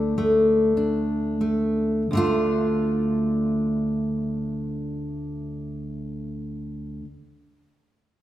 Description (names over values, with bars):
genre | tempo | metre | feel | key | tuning
folk, solo fingerstyle acoustic guitar | 27-35 BPM (dotted quarters) | 6/8 | straight | D minor | A4 = 440 Hz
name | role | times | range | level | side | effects
fingerpicked steel-string acoustic guitar | solo | 0.0-7.1 s | D2 to F4 | -22 LUFS | equal | none
room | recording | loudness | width
moderate recital hall reverb, RT60 1.3 s | recorded in a church or concert hall | -22 LUFS | side -13 dB against mid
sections
0.0-2.1 A section; 2.1-6.4 B section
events
slowing down 0.0-2.1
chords
0.0 D5